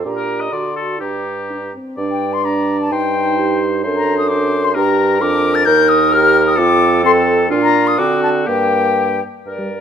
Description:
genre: quick classical-period movement for wind quintet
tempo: 120-132 BPM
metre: 2/4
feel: rubato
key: G minor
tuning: A4 = 441 Hz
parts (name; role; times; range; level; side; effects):
- mellow concert flute; melody; 0.0-9.8 s; D5 to A6; -17 LUFS; left 5 dB; none
- dark clarinet; accompaniment; 0.0-9.8 s; Bb3 to Bb4; -21 LUFS; right 8 dB; none
- mellow French horn; accompaniment; 0.0-9.7 s; G3 to Bb4; -20 LUFS; equal; none
- mellow bassoon; bass; 0.0-9.8 s; Eb2 to D3; -20 LUFS; right 2 dB; none
- clear oboe; second line; 0.2-9.8 s; F4 to Eb5; -22 LUFS; left 4 dB; none
room: moderate recital hall reverb, RT60 1.6 s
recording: close, detailed microphones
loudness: -13 LUFS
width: side -8 dB against mid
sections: 0.0-2.0 A section; 2.0-9.5 A section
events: none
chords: 0.0 Bb; 0.5 D7; 1.0 Gm; 2.0 G5; 2.9 Cm/G; 3.8 D7/F#; 4.8 Gm; 5.7 Eb; 6.6 F; 7.5 Bb; 8.0 D7; 8.5 Gm

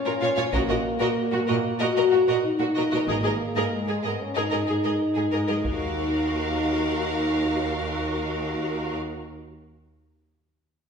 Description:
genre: cinematic, epic orchestral film score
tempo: 94 BPM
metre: 4/4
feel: straight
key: Eb minor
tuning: A4 = 440 Hz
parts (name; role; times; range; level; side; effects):
- mellow French horn section; sustained chords; 0.0-8.9 s; Ab3 to Gb4; -26 LUFS; left 2 dB; none
- rich symphonic violin section; melody; 0.1-8.9 s; Bb4 to F5; -34 LUFS; left 2 dB; none
- rich symphonic violin section; second line; 0.1-8.9 s; Gb4 to Db5; -31 LUFS; equal; none
- rich symphonic viola section; accompaniment; 0.1-8.9 s; F4 to Ab4; -30 LUFS; equal; none
- clear symphonic cello section; bass; 0.1-8.9 s; Eb2 to Bb2; -32 LUFS; right 4 dB; none
- rich symphonic double bass section; bass; 0.5-8.9 s; Ab1 to Eb2; -32 LUFS; right 2 dB; none
- taiko ensemble; drums; 0.5-1.8, 5.6-6.9 s; none; -32 LUFS; right 1 dB; none
room: wet recital hall reverb, RT60 1.4 s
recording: recorded in a church or concert hall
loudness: -22 LUFS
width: side -6 dB against mid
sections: 0.0-5.6 A section; 5.6-8.2 B section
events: none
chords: 0.0 Bbm; 0.5 Ebm/Bb; 3.1 Absus2; 5.6 Ebmadd9

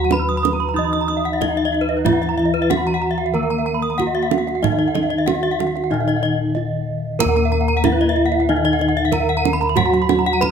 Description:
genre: Balinese gamelan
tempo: 93 BPM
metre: 4/4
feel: straight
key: Eb pelog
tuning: A4 = 439 Hz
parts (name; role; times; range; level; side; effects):
- gamelan-type bronze metallophone; melody; 0.0-10.5 s; Eb4 to Eb5; -22 LUFS; right 2 dB; none
- gamelan-type bronze metallophone; accompaniment; 0.0-10.5 s; Eb3 to Eb4; -26 LUFS; left 2 dB; none
- gamelan-type bronze metallophone; arpeggios; 0.0-10.5 s; Cb5 to Eb6; -22 LUFS; left 4 dB; none
- gamelan-type bossed gongs; bass; 0.0-10.5 s; Eb2 to Bb4; -24 LUFS; left 3 dB; none
- kendang; percussion; 0.1-10.5 s; none; -24 LUFS; right 10 dB; none
- gamelan-type bronze metallophone; arpeggios; 0.2-10.3 s; Cb5 to Fb6+35c; -26 LUFS; right 11 dB; tape echo
room: moderate recital hall reverb, RT60 1.7 s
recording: close, detailed microphones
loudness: -16 LUFS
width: side -7 dB against mid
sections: 0.0-10.5 A section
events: break 6.2-7.2; drum fill 6.6-7.2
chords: none

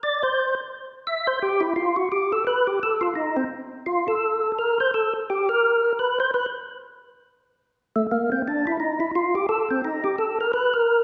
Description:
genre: jazz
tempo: 171 BPM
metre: 4/4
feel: swing 63% on 8ths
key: unclear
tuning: A4 = 441 Hz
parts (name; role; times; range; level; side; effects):
- percussive tonewheel organ; solo; 0.0-11.0 s; A3 to E5; -23 LUFS; equal; slow rotary speaker, overdrive, chorus vibrato
room: wet scoring stage reverb, RT60 1.6 s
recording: recorded in a church or concert hall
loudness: -23 LUFS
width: mono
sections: 0.0-7.4 A section; 7.4-11.0 A section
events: tonewheel organ solo 0.0-7.4, 7.4-11.0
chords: none

